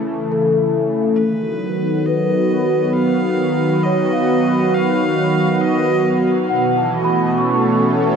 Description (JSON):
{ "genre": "ambient", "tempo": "68 BPM", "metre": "3/4", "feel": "straight", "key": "B lydian", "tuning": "A4 = 441 Hz", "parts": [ { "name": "warm analog pad", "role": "sustained chords", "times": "0.0-8.2 s", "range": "B2 to C#5", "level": "-16 LUFS", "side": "right 1 dB", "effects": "chorus" }, { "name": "large celesta", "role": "arpeggios", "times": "0.0-8.2 s", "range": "A4 to C#6", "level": "-22 LUFS", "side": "left 2 dB", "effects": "analog chorus, diffuse ambient delay" }, { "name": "clear electric violin", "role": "melody", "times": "1.2-6.3 s", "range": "B4 to E#5", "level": "-27 LUFS", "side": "equal", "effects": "diffuse ambient delay" }, { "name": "analog drone", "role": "drone", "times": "3.9-8.2 s", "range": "B3 to F#4", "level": "-25 LUFS", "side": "right 1 dB", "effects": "chorus" } ], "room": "wet plate reverb, RT60 2.7 s", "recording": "dreamy mix soaked in reverb", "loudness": "-14 LUFS", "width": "side -6 dB against mid", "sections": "0.0-1.2 A section; 1.2-8.2 B section", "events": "fade-in on electric violin 1.2-8.2", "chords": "0.0 A; 1.2 B; 6.5 A/B", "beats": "0.32 | 1.21 2.09 2.97 | 3.85 4.74 5.62 | 6.50 7.38" }